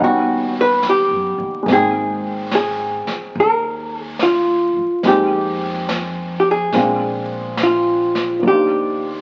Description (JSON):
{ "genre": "jazz ballad", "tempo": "71 BPM", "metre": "4/4", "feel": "swing 68% on 8ths", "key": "Eb major", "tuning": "A4 = 438 Hz", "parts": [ { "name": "archtop guitar, miked and amplified", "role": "melody", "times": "0.0-9.2 s", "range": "F4 to B4", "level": "-19 LUFS", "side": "equal", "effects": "none" }, { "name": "warm baby grand piano", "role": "accompaniment", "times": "0.0-9.2 s", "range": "F3 to G5", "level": "-23 LUFS", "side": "equal", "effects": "none" }, { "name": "upright bass", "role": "bass", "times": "0.0-9.2 s", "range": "Ab1 to F#2", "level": "-32 LUFS", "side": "equal", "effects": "none" }, { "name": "jazz brush drum kit", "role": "drums", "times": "0.8-9.2 s", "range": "brushed snare drum, hi-hat, snare drum", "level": "-30 LUFS", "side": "equal", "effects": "none" } ], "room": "moderate large studio reverb, RT60 1.1 s", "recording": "very old 78 rpm record, vinyl crackle, nothing above 7.8 kHz", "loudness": "-18 LUFS", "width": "mono", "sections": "0.0-9.2 A section", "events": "none", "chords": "0.0 Eb7alt; 1.7 Abmaj9; 5.0 Fm11; 6.7 Bb9; 8.4 Ebmaj9" }